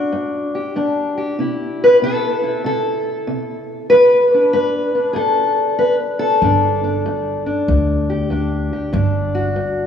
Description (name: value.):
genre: acoustic country blues, solo or duo.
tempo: 95 BPM.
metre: 4/4.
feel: swing 65% on 8ths.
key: G major.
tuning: A4 = 438 Hz.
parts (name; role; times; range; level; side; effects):
fingerpicked steel-string acoustic guitar; melody; 0.0-9.9 s; G2 to B4; -15 LUFS; left 1 dB; none.
upright bass; bass; 6.4-9.9 s; G1 to D2; -19 LUFS; right 1 dB; none.
room: wet church reverb, RT60 2.7 s.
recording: recorded in a church or concert hall.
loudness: -15 LUFS.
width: side -8 dB against mid.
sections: 0.0-9.9 A section.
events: none.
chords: 0.0 G5; 1.4 C; 3.9 G.